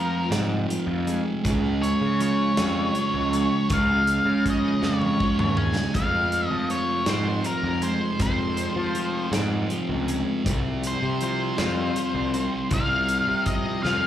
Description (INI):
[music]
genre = quiet-loud alternative rock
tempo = 53 BPM (dotted quarters)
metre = 6/8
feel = straight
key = F minor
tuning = A4 = 441 Hz
[part]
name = octave-fuzz lead guitar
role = melody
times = 0.0-14.1 s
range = Bb4 to Ab5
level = -26 LUFS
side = left 1 dB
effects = distortion, slapback echo, plate reverb
[part]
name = twelve-string electric guitar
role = arpeggios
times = 0.0-14.1 s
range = F2 to F4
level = -30 LUFS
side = left 3 dB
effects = spring reverb, plate reverb, slapback echo
[part]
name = thick fuzz guitar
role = riff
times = 0.0-14.1 s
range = F2 to Db4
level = -27 LUFS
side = right 3 dB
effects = distortion, slapback echo
[part]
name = fuzz picked electric bass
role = bass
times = 0.0-14.1 s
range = C2 to F3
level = -28 LUFS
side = left 1 dB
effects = overdrive
[part]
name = big rock drum kit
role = drums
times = 0.3-14.0 s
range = hi-hat, kick drum, snare drum, toms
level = -30 LUFS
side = equal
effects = none
[sound]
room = moderate club reverb, RT60 0.8 s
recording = live gig heard through the venue's PA, club reverb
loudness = -21 LUFS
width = side -11 dB against mid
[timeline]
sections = 0.0-14.1 A section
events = drum fill 4.8-6.0, 13.8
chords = 0.0 Fm; 1.4 Db; 6.0 Fm; 10.5 Csus4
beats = 0.32 | 1.45 2.58 | 3.70 4.83 | 5.96 7.09 | 8.21 9.34 | 10.47 11.60 | 12.72 13.85